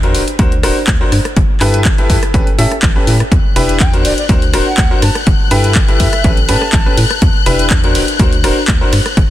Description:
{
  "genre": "piano house",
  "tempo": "123 BPM",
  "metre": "4/4",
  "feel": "swing 53% on 16ths",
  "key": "unclear",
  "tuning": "A4 = 444 Hz",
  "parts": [
    { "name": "bright grand piano", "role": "riff", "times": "0.0-8.9 s", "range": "C#4 to E5", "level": "-17 LUFS", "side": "left 1 dB", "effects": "sidechain pumping, tape echo" },
    { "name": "organ-like FM bass", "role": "bass", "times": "0.0-9.2 s", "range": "D1 to A2", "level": "-15 LUFS", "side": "equal", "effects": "sidechain pumping" },
    { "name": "house drum kit", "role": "drums", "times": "0.0-9.3 s", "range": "handclaps, hi-hat, ride cymbal, rim click", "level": "-19 LUFS", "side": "equal", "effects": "small room ambience" },
    { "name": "electronic kick drum", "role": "drums", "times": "0.4-9.3 s", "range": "none", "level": "-13 LUFS", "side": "equal", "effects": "overdrive, small room ambience" },
    { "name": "warm studio string section", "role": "sustained chords", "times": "3.3-9.3 s", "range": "F#6", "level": "-20 LUFS", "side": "left 9 dB", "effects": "sidechain pumping" },
    { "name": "silver concert flute", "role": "melody", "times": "3.8-7.0 s", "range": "D5 to A5", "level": "-23 LUFS", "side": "right 1 dB", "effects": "vintage 12-bit sampler grit, tape echo" }
  ],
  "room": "little or no reverb",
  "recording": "dense, heavily limited modern master",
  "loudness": "-9 LUFS",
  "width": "side -13 dB against mid",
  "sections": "0.0-9.3 A section",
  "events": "none",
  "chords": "0.1 Daug7; 1.1 G69; 2.3 A9; 3.3 Em7; 4.0 Daug7; 5.0 G69; 6.2 A9; 7.2 Em7; 8.0 Daug7",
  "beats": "0.39 0.88 | 1.36 1.85 2.34 2.83 | 3.32 3.80 4.29 4.78 | 5.27 5.76 6.24 6.73 | 7.22 7.71 8.20 8.68 | 9.17"
}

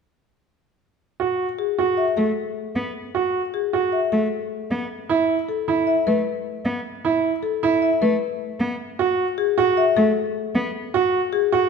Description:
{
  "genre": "classical, minimalist pattern music",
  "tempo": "154 BPM",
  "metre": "5/4",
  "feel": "straight",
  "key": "unclear",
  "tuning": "A4 = 435 Hz",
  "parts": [
    { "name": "clear grand piano", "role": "arpeggios", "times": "1.2-11.7 s", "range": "E4 to F#4", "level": "-21 LUFS", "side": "right 5 dB", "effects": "none" },
    { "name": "marimba with medium mallets", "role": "melody", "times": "1.6-11.6 s", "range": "G#4 to E5", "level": "-24 LUFS", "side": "left 9 dB", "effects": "none" },
    { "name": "warm cello", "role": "accompaniment", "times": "2.2-10.7 s", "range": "A3 to B3", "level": "-24 LUFS", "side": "right 2 dB", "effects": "none" }
  ],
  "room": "moderate scoring stage reverb, RT60 1.7 s",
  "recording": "minimal, uncompressed stereo recording",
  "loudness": "-20 LUFS",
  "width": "side -5 dB against mid",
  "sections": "1.2-11.7 A section",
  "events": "none",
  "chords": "1.2 N.C.; 5.1 Asus2",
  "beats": "| 1.20 1.59 1.98 2.37 2.76 | 3.15 3.54 3.93 4.32 4.71 | 5.10 5.49 5.88 6.26 6.65 | 7.04 7.43 7.82 8.21 8.60 | 8.99 9.38 9.77 10.16 10.55 | 10.94 11.33"
}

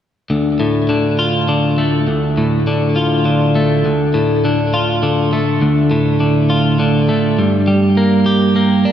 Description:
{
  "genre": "rock",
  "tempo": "102 BPM",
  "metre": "3/4",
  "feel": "straight",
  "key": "D minor",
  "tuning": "A4 = 440 Hz",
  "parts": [
    { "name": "twelve-string electric guitar", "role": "arpeggios", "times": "0.3-8.9 s", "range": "D2 to G4", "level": "-12 LUFS", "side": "equal", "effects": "tape echo" }
  ],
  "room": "wet lush hall reverb, RT60 2.4 s",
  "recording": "big arena sound",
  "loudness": "-12 LUFS",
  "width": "side -9 dB against mid",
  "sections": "0.3-8.9 A section",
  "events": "none",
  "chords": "0.3 Dm; 7.4 Gm",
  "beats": "| 0.31 0.90 1.49 | 2.08 2.67 3.25 | 3.84 4.43 5.02 | 5.61 6.20 6.78 | 7.37 7.96 8.55"
}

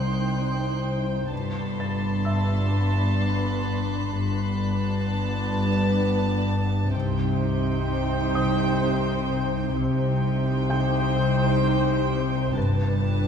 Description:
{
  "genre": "cinematic, suspense film score",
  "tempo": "64 BPM",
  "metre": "3/4",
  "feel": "straight",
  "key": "unclear",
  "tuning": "A4 = 442 Hz",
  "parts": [
    { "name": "warm symphonic violin section", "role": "melody", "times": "0.0-13.3 s", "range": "G5 to A5", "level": "-33 LUFS", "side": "left 1 dB", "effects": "none" },
    { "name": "dark symphonic viola section", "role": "accompaniment", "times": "0.0-13.3 s", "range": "B3 to C5", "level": "-28 LUFS", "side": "right 2 dB", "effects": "none" },
    { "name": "marimba with medium mallets", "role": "riff", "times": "0.0-13.3 s", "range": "G2 to C4", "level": "-26 LUFS", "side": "left 4 dB", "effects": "none" },
    { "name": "warm symphonic cello section", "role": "bass", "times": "0.0-13.3 s", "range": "C2 to C3", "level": "-30 LUFS", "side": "right 2 dB", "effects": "none" },
    { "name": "warm symphonic double bass section", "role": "bass", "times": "0.0-13.3 s", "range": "G1 to C2", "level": "-29 LUFS", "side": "right 2 dB", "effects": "none" },
    { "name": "felt-muted upright piano", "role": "texture", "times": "0.0-13.3 s", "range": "E5 to A6", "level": "-37 LUFS", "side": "equal", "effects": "none" },
    { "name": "warm studio violin section", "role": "texture", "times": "0.0-6.4, 12.6-13.3 s", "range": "G5 to F#6", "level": "-37 LUFS", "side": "left 1 dB", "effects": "none" }
  ],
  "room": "wet scoring stage reverb, RT60 1.7 s",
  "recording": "heard from further back in the room",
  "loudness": "-22 LUFS",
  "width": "side -7 dB against mid",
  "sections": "0.0-13.3 A section",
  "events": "none",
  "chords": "0.0 Cm; 1.3 Gadd9; 6.9 Cm; 12.6 Gadd9",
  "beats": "0.38 | 1.32 2.26 3.19 | 4.13 5.07 6.01 | 6.94 7.88 8.82 | 9.76 10.69 11.63 | 12.57"
}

